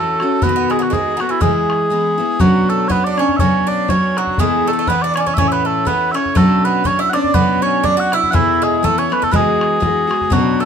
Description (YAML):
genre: celtic folk, Celtic polka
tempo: 121 BPM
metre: 2/4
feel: swing 56% on 8ths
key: E mixolydian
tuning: A4 = 441 Hz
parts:
  - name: mellow small bagpipes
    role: melody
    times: 0.0-10.7 s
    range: E4 to F#5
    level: -17 LUFS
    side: right 1 dB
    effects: none
  - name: Irish bouzouki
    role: second line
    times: 0.0-10.7 s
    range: E3 to F#4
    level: -21 LUFS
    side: right 5 dB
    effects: none
  - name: picked steel-string acoustic guitar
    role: accompaniment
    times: 0.0-10.7 s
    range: E2 to F#4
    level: -17 LUFS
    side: left 2 dB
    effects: none
  - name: bodhran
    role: percussion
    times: 0.2-10.4 s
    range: none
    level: -21 LUFS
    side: left 1 dB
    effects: none
  - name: dark cello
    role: bass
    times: 10.3-10.7 s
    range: B2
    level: -21 LUFS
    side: equal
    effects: none
room: moderate studio reverb, RT60 1.0 s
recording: minimal, uncompressed stereo recording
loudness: -13 LUFS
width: side -7 dB against mid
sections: 0.0-2.4 A section; 2.4-10.3 B section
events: none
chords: 0.4 B7; 1.4 E; 2.4 Bmadd9; 4.4 Esus4; 5.4 A; 6.4 Bmadd9; 8.3 Esus4; 9.3 Eadd9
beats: | 0.43 0.92 | 1.42 1.91 | 2.41 2.90 | 3.40 3.89 | 4.39 4.88 | 5.38 5.87 | 6.37 6.86 | 7.35 7.85 | 8.34 8.84 | 9.33 9.82 | 10.32